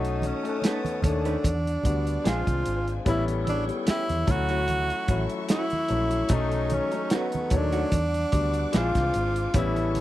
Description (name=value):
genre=lush 1970s-style soul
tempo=74 BPM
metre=4/4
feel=swing 54% on 16ths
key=unclear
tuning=A4 = 438 Hz
part: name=breathy tenor saxophone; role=melody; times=0.0-10.0 s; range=B3 to F#4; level=-28 LUFS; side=right 1 dB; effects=none
part: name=warm concert grand piano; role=accompaniment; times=0.0-10.0 s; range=D#3 to C#5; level=-30 LUFS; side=left 6 dB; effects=none
part: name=warm studio string section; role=sustained chords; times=0.0-10.0 s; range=G3 to D#6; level=-40 LUFS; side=equal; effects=none
part: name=vintage muted fingered electric bass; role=bass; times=0.0-10.0 s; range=G#1 to E2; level=-28 LUFS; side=equal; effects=none
part: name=warm soul drum kit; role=drums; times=0.0-10.0 s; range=hi-hat, kick drum, snare drum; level=-26 LUFS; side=equal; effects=none
part: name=congas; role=percussion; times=0.2-10.0 s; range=none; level=-35 LUFS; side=right 4 dB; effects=none
part: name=glockenspiel with rubber mallets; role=texture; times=0.2-9.3 s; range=C#6 to A6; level=-42 LUFS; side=left 1 dB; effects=none
part: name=electric guitar through a small old amp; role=riff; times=0.6-8.9 s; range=D#3 to B4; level=-33 LUFS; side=right 5 dB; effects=none
room=little or no reverb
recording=dry, close 1970s-style studio recording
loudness=-23 LUFS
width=side -14 dB against mid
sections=0.0-10.0 A section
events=none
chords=0.0 B9; 1.4 Em9; 2.3 A#9; 3.1 A7; 4.3 Dmaj9; 6.3 B9; 7.9 Em9; 8.7 A#9